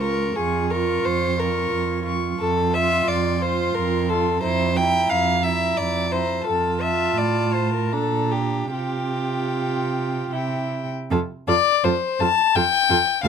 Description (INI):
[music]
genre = classical, slow romantic movement for string quartet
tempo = 73-91 BPM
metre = 3/4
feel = rubato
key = F major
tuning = A4 = 441 Hz
[part]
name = warm violin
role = melody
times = 0.0-13.3 s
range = C5 to Db6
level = -24 LUFS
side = left 9 dB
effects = none
[part]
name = warm violin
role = second line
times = 0.0-13.3 s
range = G4 to G5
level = -24 LUFS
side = left 1 dB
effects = none
[part]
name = warm viola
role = accompaniment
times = 0.0-13.3 s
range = D4 to F4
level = -28 LUFS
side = right 5 dB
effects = none
[part]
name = warm cello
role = bass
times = 0.0-13.3 s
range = Db2 to C3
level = -25 LUFS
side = right 5 dB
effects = none
[sound]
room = light reverb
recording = none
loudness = -19 LUFS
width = side -7 dB against mid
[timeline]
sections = 0.0-11.1 A section; 11.1-13.3 B section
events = none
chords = 0.4 Db/F; 4.4 Dm9/F (rootless); 6.5 F; 7.9 Gm/Bb; 8.7 Csus4; 10.3 C; 11.1 F